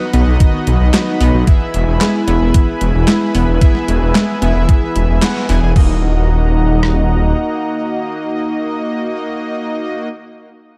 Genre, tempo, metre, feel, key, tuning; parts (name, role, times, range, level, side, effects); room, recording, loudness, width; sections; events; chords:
synthwave; 112 BPM; 4/4; straight; Eb phrygian; A4 = 440 Hz
warm analog pad; sustained chords; 0.0-10.1 s; Eb4 to B5; -24 LUFS; equal; chorus, sidechain pumping
analog synth brass; stabs; 0.0-10.1 s; Bb3 to G#5; -24 LUFS; equal; chorus, cassette tape, tape echo
unison pluck; arpeggios; 0.1-6.0 s; D#3 to E4; -24 LUFS; equal; tape echo
detuned saw bass; bass; 0.1-7.3 s; Eb1 to B1; -16 LUFS; equal; chorus, tube saturation, sidechain pumping
detuned 8-bit digital drum machine; drums; 0.1-5.9 s; crash cymbal, handclaps, hi-hat, snare drum; -22 LUFS; equal; overdrive
detuned 8-bit digital drum machine; drums; 0.4-7.0 s; kick drum, rim click; -13 LUFS; equal; overdrive
light reverb, digital ambience; dark, warm production; -15 LUFS; mono
0.0-5.8 A section; 5.8-10.0 B section
band accent 5.2
0.0 B; 1.5 E; 5.8 Ebm